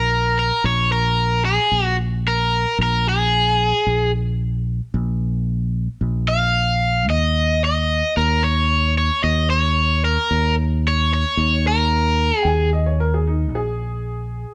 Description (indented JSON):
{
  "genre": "blues",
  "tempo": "112 BPM",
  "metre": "4/4",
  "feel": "straight",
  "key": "Bb minor",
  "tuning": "A4 = 441 Hz",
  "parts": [
    { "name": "cranked stack guitar", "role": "melody", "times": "0.0-12.7 s", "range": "Ab4 to F5", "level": "-21 LUFS", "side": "equal", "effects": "overdrive" },
    { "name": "fingered electric bass", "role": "bass", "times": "0.0-14.4 s", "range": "Bb1 to Eb2", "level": "-22 LUFS", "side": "equal", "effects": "none" },
    { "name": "clear upright piano", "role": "second line", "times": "12.4-14.5 s", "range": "Eb4 to Ab5", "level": "-28 LUFS", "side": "equal", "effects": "none" }
  ],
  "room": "moderate stone room reverb, RT60 1.1 s",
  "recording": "band playing live in one room",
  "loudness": "-19 LUFS",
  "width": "mono",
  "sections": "0.0-14.5 A section",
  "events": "none",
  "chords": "0.0 Bb7(no3); 7.1 Eb5; 13.5 Absus2",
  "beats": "0.11 | 0.65 1.19 1.72 2.26 | 2.79 3.33 3.87 4.40 | 4.94 5.48 6.01 6.55 | 7.09 7.62 8.16 8.70 | 9.23 9.77 10.30 10.84 | 11.38 11.91 12.45 12.98 | 13.52 14.06"
}